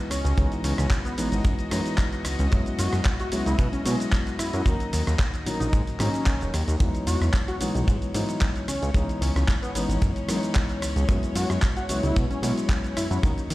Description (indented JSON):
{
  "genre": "nu-disco, nu disco",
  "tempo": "112 BPM",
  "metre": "4/4",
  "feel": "swing 53% on 16ths",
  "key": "unclear",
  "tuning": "A4 = 441 Hz",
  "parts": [
    { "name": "dark concert grand piano", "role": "accompaniment", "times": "0.0-13.5 s", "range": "D#3 to E4", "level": "-29 LUFS", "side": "left 1 dB", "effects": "slapback echo" },
    { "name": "muted chamber violin section", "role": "sustained chords", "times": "0.0-13.5 s", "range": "C#4 to D#5", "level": "-37 LUFS", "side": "left 4 dB", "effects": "sidechain pumping" },
    { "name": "wide unison lead", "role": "melody", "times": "0.1-13.2 s", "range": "B3 to F#4", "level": "-33 LUFS", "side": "equal", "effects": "analog delay" },
    { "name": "fat analog bass", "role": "bass", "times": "0.1-13.5 s", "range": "D#1 to B2", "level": "-25 LUFS", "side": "equal", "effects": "none" },
    { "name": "dusty soul sampler-style drum kit", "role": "drums", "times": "0.1-13.5 s", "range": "handclaps, hi-hat, ride cymbal, rim click, shaker", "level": "-33 LUFS", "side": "right 1 dB", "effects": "none" },
    { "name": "kick drum", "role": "drums", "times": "0.4-13.3 s", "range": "none", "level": "-24 LUFS", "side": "equal", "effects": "none" }
  ],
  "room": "small room ambience",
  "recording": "played on a big sound system in a bare room, stone room reverb",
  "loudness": "-22 LUFS",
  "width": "side -18 dB against mid",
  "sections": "0.0-13.5 A section",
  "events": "none",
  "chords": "0.1 C#m7; 2.5 F#9sus4; 4.7 D#m7; 6.8 Emaj9; 8.7 C#m7; 11.1 F#9sus4"
}